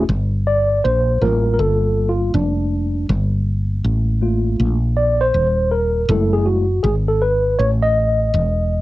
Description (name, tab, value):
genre	hip hop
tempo	80 BPM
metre	4/4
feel	swing 65% on 16ths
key	G minor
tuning	A4 = 439 Hz
part	mellow tine electric piano	accompaniment	0.0-8.8 s	G3 to Eb5	-19 LUFS	equal	medium stereo tremolo, cassette tape
part	woody fretless electric bass	bass	0.0-8.8 s	Eb1 to Bb1	-18 LUFS	equal	none
room	little or no reverb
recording	home recording on cassette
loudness	-15 LUFS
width	side -17 dB against mid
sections	0.1-8.8 A section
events	tine electric piano solo 0.1-8.8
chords	0.1 Gm9; 6.1 F#m9